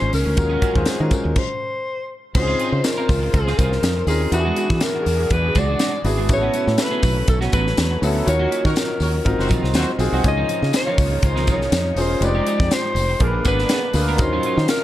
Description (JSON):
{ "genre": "polished 1980s jazz-funk pop", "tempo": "122 BPM", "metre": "4/4", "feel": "swing 54% on 16ths", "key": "Db major", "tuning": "A4 = 441 Hz", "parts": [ { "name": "mellow alto saxophone", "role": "melody", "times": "0.0-14.8 s", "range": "F#4 to Eb5", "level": "-23 LUFS", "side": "left 1 dB", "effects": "none" }, { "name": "clear concert grand piano", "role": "accompaniment", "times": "0.0-14.8 s", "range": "Ab3 to Db5", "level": "-25 LUFS", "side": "left 1 dB", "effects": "lush chorus" }, { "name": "warm symphonic string section", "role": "sustained chords", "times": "0.0-14.8 s", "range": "Db3 to F5", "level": "-31 LUFS", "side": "equal", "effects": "none" }, { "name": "electric guitar at the edge of break-up", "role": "riff", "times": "0.0-14.7 s", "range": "F3 to Bb4", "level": "-29 LUFS", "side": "right 3 dB", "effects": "analog chorus" }, { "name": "fingered electric bass", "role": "bass", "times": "0.0-14.7 s", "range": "Fb1 to E3", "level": "-21 LUFS", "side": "equal", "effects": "none" }, { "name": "crisp fusion drum kit", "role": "drums", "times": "0.1-14.8 s", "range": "crash cymbal, hi-hat, kick drum, snare drum", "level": "-22 LUFS", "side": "equal", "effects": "none" }, { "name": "tambourine", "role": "percussion", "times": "0.1-14.8 s", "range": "none", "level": "-37 LUFS", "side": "left 8 dB", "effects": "none" }, { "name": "warm horn section", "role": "second line", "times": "8.7-9.9 s", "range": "C4 to Db5", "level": "-29 LUFS", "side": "equal", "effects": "digital delay" } ], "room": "light reverb, small room reverb", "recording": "dark, warm production", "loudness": "-17 LUFS", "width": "side -13 dB against mid", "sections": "0.0-2.3 A section; 2.3-14.8 B section", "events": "stop 1.4-2.3; band accent 8.3-10.2", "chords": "0.4 Ebm11; 1.4 N.C.; 2.3 Dbmaj7; 4.3 E9; 6.3 A69; 8.3 Ebm7; 9.3 Ab13; 10.2 Dbmaj9; 12.2 Fm9; 13.2 Bb7b9; 14.2 Ebm9" }